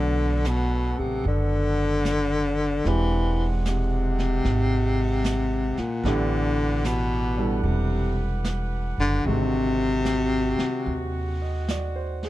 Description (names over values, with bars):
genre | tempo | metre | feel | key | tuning
jazz ballad | 75 BPM | 4/4 | swing 67% on 8ths | unclear | A4 = 440 Hz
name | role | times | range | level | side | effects
breathy baritone saxophone | melody | 0.0-11.7 s | Bb2 to E3 | -25 LUFS | left 2 dB | none
clear concert grand piano | accompaniment | 0.0-12.3 s | D3 to Eb5 | -32 LUFS | right 2 dB | none
mellow saxophone section | sustained chords | 0.0-12.3 s | G#3 to F#5 | -36 LUFS | right 2 dB | none
upright bass | bass | 0.0-12.3 s | E1 to Eb2 | -25 LUFS | right 1 dB | none
vintage brush drum kit | drums | 0.4-12.3 s | brushed snare drum, hi-hat, snare drum | -34 LUFS | right 1 dB | none
room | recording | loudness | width
little or no reverb | dark, warm production | -22 LUFS | side -15 dB against mid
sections
0.0-12.3 A section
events
none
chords
0.0 Bm7; 2.9 E7alt; 6.0 Am11; 9.2 Ab7#11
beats
0.45 1.26 2.06 | 2.86 3.66 4.45 5.25 | 6.04 6.84 7.64 8.44 | 9.25 10.05 10.86 11.68